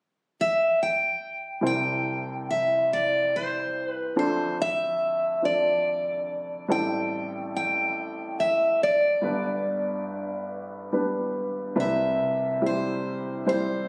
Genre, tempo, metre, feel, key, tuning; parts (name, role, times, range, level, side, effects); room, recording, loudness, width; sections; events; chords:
folk; 71 BPM; 3/4; straight; C major; A4 = 441 Hz
picked steel-string acoustic guitar; melody; 0.4-13.9 s; C5 to G5; -27 LUFS; equal
clear upright piano; accompaniment; 1.6-13.9 s; G1 to C5; -31 LUFS; equal
woody fretless electric bass; bass; 11.8-12.2 s; C2; -39 LUFS; equal; lush chorus
light reverb; recorded on a phone in the room, studio reverb; -26 LUFS; mono
0.0-1.6 A section; 1.6-11.8 B section; 11.8-13.9 C section
0.0 N.C.; 1.6 C; 4.2 Dm7; 6.7 Am7; 9.2 G; 11.8 Cmaj7